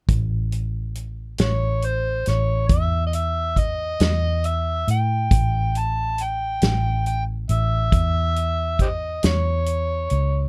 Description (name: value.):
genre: slow blues.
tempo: 46 BPM (dotted quarters).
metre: 12/8.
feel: straight.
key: A mixolydian.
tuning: A4 = 440 Hz.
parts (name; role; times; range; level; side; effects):
vintage muted fingered electric bass; bass; 0.1-10.5 s; A1 to A2; -25 LUFS; equal; none.
natural country drum kit; drums; 0.1-10.3 s; hi-hat, kick drum, snare drum; -24 LUFS; equal; none.
overdriven harmonica; melody; 1.4-10.5 s; G4 to A5; -27 LUFS; equal; none.
room: little or no reverb.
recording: dark, warm production.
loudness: -22 LUFS.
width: mono.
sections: 0.1-10.5 A section.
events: none.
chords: 0.1 A.